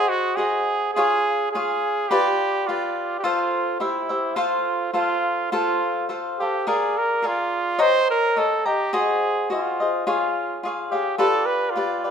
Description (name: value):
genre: mexican folk, mariachi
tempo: 106 BPM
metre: 2/4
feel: straight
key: unclear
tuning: A4 = 440 Hz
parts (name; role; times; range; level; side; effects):
- warm trumpet; melody; 0.0-12.1 s; E4 to C5; -22 LUFS; right 3 dB; none
- cavaquinho; accompaniment; 0.0-12.1 s; E4 to Bb5; -23 LUFS; left 3 dB; none
room: moderate recital hall reverb, RT60 1.5 s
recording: minimal, uncompressed stereo recording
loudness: -20 LUFS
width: side -7 dB against mid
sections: 0.0-5.5 A section; 5.5-12.1 A section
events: none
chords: 0.0 Ab7; 1.0 Db; 2.1 G7; 3.2 F; 3.8 C; 4.4 F; 6.7 Bb7; 7.8 Eb7; 8.9 Ab7; 10.1 Db; 11.2 G7